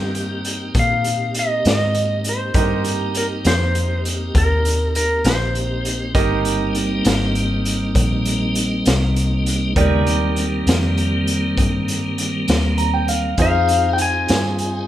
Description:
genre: slow blues.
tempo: 66 BPM (dotted quarters).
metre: 12/8.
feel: straight.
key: C minor.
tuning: A4 = 438 Hz.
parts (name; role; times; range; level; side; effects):
clean lap steel guitar; melody; 0.0-6.4, 13.4-14.9 s; Bb4 to Ab5; -21 LUFS; left 2 dB; none.
bright concert grand piano; accompaniment; 0.0-14.9 s; Eb4 to D6; -26 LUFS; right 6 dB; none.
tonewheel organ; sustained chords; 0.0-14.9 s; Db3 to Ab4; -23 LUFS; equal; slow rotary speaker, overdrive, chorus vibrato.
vintage muted fingered electric bass; bass; 0.0-14.9 s; G1 to Bb2; -21 LUFS; equal; none.
raw garage drum kit; drums; 0.1-14.7 s; hi-hat, kick drum, snare drum; -21 LUFS; equal; none.
room: light reverb.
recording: band playing live in one room.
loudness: -16 LUFS.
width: side -12 dB against mid.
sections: 0.0-14.9 A section.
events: grand piano fill 12.5-13.4.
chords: 0.0 Cm7; 13.4 Fm7.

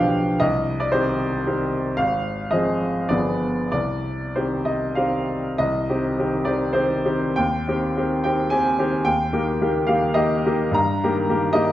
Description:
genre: classical, romantic character piece for solo piano.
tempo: 89-117 BPM.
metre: 3/4.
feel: rubato.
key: C minor.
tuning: A4 = 440 Hz.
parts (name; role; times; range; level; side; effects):
bright grand piano; solo; 0.0-11.7 s; G1 to Bb5; -19 LUFS; equal; none.
room: wet recital hall reverb, RT60 1.4 s.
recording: lossy compression artefacts.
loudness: -19 LUFS.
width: side -13 dB against mid.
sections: 0.0-5.6 A section; 5.6-11.7 B section.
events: none.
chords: 0.4 Cm; 2.0 Fm/Ab; 3.1 G7b9; 3.7 Cm; 7.4 Cm/Eb; 9.1 Eb; 10.7 Eb/G.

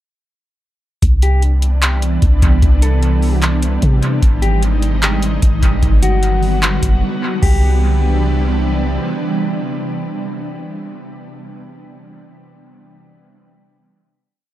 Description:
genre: hip hop, atmospheric cloud-rap.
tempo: 150 BPM.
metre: 4/4.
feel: half-time.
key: C lydian.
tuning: A4 = 444 Hz.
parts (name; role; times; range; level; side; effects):
ethereal airy pad; sustained chords; 1.3-10.7 s; C3 to F#4; -20 LUFS; right 1 dB; ensemble chorus, built-in reverb, sidechain pumping.
soft 808-style bass; bass; 1.0-9.0 s; F#1 to C3; -14 LUFS; equal; none.
booming analog drum machine; drums; 1.0-7.6 s; crash cymbal, handclaps, hi-hat, kick drum; -16 LUFS; equal; dub echo.
mellow electric guitar; melody; 1.2-8.6 s; F#4 to A4; -25 LUFS; left 2 dB; dub echo.
room: digital ambience.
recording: echo-heavy mix.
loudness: -12 LUFS.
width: side -14 dB against mid.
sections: 1.0-7.4 verse; 7.4-10.6 final chord.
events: break 7.0-7.4.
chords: 1.0 Cmaj9; 4.2 Abmaj7; 5.8 Gmaj7; 7.4 Cmaj9.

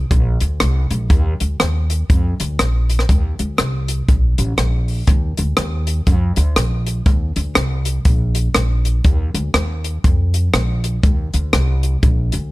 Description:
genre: ska.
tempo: 121 BPM.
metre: 4/4.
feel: swing 61% on 8ths.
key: unclear.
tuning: A4 = 443 Hz.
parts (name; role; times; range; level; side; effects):
upright bass; bass; 0.0-12.5 s; A1 to F2; -17 LUFS; equal; none.
compact cocktail drum kit; drums; 0.1-12.4 s; hi-hat, kick drum, rim click; -17 LUFS; equal; none.
room: little or no reverb.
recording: none.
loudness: -15 LUFS.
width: side -19 dB against mid.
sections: 0.0-12.5 A section.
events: none.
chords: none.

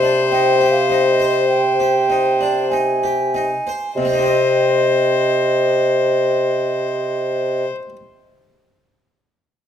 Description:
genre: classical, baroque-style sonata movement with continuo.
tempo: 49 BPM.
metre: 4/4.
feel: rubato.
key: C minor.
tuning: A4 = 440 Hz.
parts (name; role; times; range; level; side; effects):
rich violin; melody; 0.0-7.7 s; C5; -19 LUFS; left 6 dB; none.
baroque flute; second line; 0.0-7.7 s; Eb5 to Ab5; -21 LUFS; right 6 dB; none.
harpsichord; accompaniment; 0.0-8.0 s; C3 to Eb5; -27 LUFS; equal; none.
mellow bassoon; bass; 0.0-7.7 s; C3; -19 LUFS; equal; none.
room: light reverb.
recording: close, detailed microphones.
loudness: -15 LUFS.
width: side -8 dB against mid.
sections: 0.0-4.0 A section; 4.0-8.9 B section.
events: slowing down 0.0-4.0.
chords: 0.0 Cm.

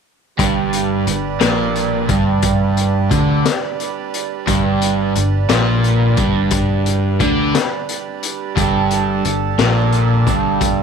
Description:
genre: psychedelic rock.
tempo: 59 BPM (dotted quarters).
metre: 6/8.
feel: straight.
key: unclear.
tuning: A4 = 437 Hz.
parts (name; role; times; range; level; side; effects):
hand-pumped harmonium; sustained chords; 0.4-10.8 s; G3 to B4; -24 LUFS; right 10 dB; none.
crunchy overdriven guitar; riff; 0.4-10.8 s; G2 to D3; -16 LUFS; right 1 dB; phaser.
fingered electric bass; bass; 0.4-10.8 s; G1 to D2; -23 LUFS; left 1 dB; none.
raw garage drum kit; drums; 0.4-10.8 s; hi-hat, kick drum, snare drum; -20 LUFS; left 5 dB; none.
room: light reverb, small room reverb.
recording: 1960s-style stereo.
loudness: -14 LUFS.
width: side -6 dB against mid.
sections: 0.4-10.8 A section.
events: none.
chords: 0.4 G.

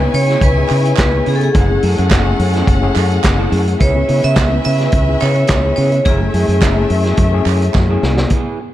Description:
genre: disco.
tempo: 106 BPM.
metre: 4/4.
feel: straight.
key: unclear.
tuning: A4 = 435 Hz.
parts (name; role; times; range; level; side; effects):
vibraphone with hard mallets; melody; 0.0-6.9 s; G#4 to E5; -18 LUFS; right 1 dB; none.
warm studio violin section; second line; 0.0-8.3 s; A3 to G#5; -22 LUFS; left 2 dB; none.
electric guitar through a small old amp; accompaniment; 0.0-8.6 s; A3 to G#4; -25 LUFS; right 6 dB; none.
overdriven reed electric piano; accompaniment; 0.0-8.3 s; A3 to B4; -22 LUFS; left 7 dB; fast tremolo.
fingered electric bass; bass; 0.0-8.2 s; F#1 to C#3; -15 LUFS; equal; none.
vintage drum kit; drums; 0.1-8.4 s; handclaps, hi-hat, kick drum, snare drum; -17 LUFS; equal; none.
group handclap; percussion; 0.7-7.9 s; none; -27 LUFS; right 11 dB; none.
room: light reverb, studio ambience.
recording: dark, warm production.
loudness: -11 LUFS.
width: side -13 dB against mid.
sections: 0.0-8.3 A section.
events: drum fill 7.8-8.3.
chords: 0.0 C#m7; 1.5 F#m9; 3.8 C#m7; 6.1 F#m9.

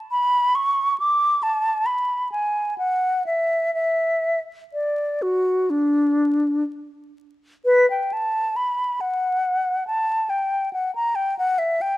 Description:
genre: classical, baroque-style fantasia for unaccompanied flute.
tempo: 57-71 BPM.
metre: 4/4.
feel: rubato.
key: D major.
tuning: A4 = 441 Hz.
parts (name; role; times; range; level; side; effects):
mellow concert flute; solo; 0.1-12.0 s; D4 to D6; -19 LUFS; equal; none.
room: light reverb.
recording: close, detailed microphones, vinyl crackle.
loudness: -19 LUFS.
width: side -16 dB against mid.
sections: 0.0-7.7 A section; 7.7-12.0 A section.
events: none.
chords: none.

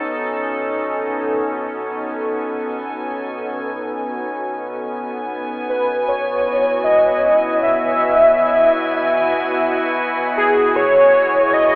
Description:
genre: ambient.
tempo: free time.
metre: none.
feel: none.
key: unclear.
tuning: A4 = 439 Hz.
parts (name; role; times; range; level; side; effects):
evolving wavetable pad; sustained chords; 0.0-11.8 s; B2 to G#5; -20 LUFS; equal; chorus, built-in reverb.
warm velvety synth lead; melody; 5.7-11.8 s; G#4 to E5; -14 LUFS; equal; chorus, diffuse ambient delay.
room: wet huge ambient reverb, RT60 8.3 s.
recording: telephone sound.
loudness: -15 LUFS.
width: side -25 dB against mid.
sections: 0.0-11.8 A section.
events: none.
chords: 0.0 B13; 5.3 Eadd9/B.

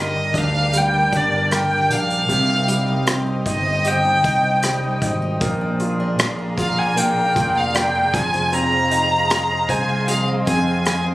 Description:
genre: pop ballad.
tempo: 77 BPM.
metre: 4/4.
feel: straight.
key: unclear.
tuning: A4 = 441 Hz.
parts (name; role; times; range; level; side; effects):
warm violin; melody; 0.0-11.0 s; D5 to Bb5; -19 LUFS; equal; none.
clear baby grand piano; accompaniment; 0.0-11.1 s; C3 to D5; -25 LUFS; left 1 dB; none.
glassy FM pad; sustained chords; 0.0-11.1 s; Ab4 to Eb6; -29 LUFS; equal; ensemble chorus, built-in reverb.
picked steel-string acoustic guitar; arpeggios; 0.0-11.1 s; F2 to Ab4; -30 LUFS; right 2 dB; none.
fretless electric bass; bass; 0.0-11.1 s; F1 to F2; -23 LUFS; equal; none.
unplugged drum kit; drums; 0.3-11.0 s; hi-hat, kick drum, rim click; -24 LUFS; equal; none.
room: small room ambience.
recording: recorded on a phone in the room, club reverb, compression.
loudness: -16 LUFS.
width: side -16 dB against mid.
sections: 0.0-11.1 A section.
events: none.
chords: 0.0 Gm; 2.3 Cm; 5.4 Bb7; 8.1 Fm7.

